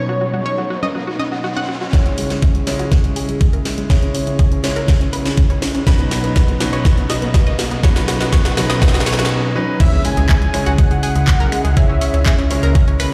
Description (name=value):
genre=progressive house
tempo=122 BPM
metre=4/4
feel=straight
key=C# minor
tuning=A4 = 440 Hz
part: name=unison lead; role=melody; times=0.0-1.4, 9.8-12.5 s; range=C#5 to G#5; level=-27 LUFS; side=equal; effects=sidechain pumping, tape echo
part: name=lush unison pad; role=sustained chords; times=0.0-13.1 s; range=B2 to C#6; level=-32 LUFS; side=equal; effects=none
part: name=analog pluck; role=arpeggios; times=0.0-13.1 s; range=G#3 to F#5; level=-27 LUFS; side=equal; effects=chorus, sidechain pumping, tape echo
part: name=warm concert grand piano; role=stabs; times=0.0-13.1 s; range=B2 to C#5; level=-24 LUFS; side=equal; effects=sidechain pumping, low-pass filter, tape echo
part: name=riser and impact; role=sound effects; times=0.1-11.8 s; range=none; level=-30 LUFS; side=equal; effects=none
part: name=congas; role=percussion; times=0.3-1.7 s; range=none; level=-28 LUFS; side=equal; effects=sidechain pumping on perc
part: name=electronic kick drum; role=drums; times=1.9-12.9 s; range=none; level=-15 LUFS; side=equal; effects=none
part: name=house drum kit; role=drums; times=1.9-13.1 s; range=crash cymbal, finger snaps, handclaps, hi-hat, snare drum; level=-26 LUFS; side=equal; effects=sidechain pumping on hats, sidechain pumping on cymbals
part: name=dark detuned saw bass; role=bass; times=2.1-13.0 s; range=B1 to C#2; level=-22 LUFS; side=equal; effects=sidechain pumping, high-pass filter
room=moderate lush hall reverb, RT60 1.9 s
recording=played on a big sound system in a bare room, stone room reverb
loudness=-16 LUFS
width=mono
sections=0.0-1.9 A section; 1.9-9.8 B section; 9.8-13.1 C section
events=riser 0.1-1.9; build-up 1.9-9.8; drum fill 1.9-9.3; filter sweep on synth arpeggio sound 1.9-9.8; filter sweep on grand piano 1.9-9.8; break 9.3-9.8; drop 9.8-13.1; impact 9.8-11.8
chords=0.0 Badd9; 1.9 C#m; 5.9 Badd9; 9.8 C#m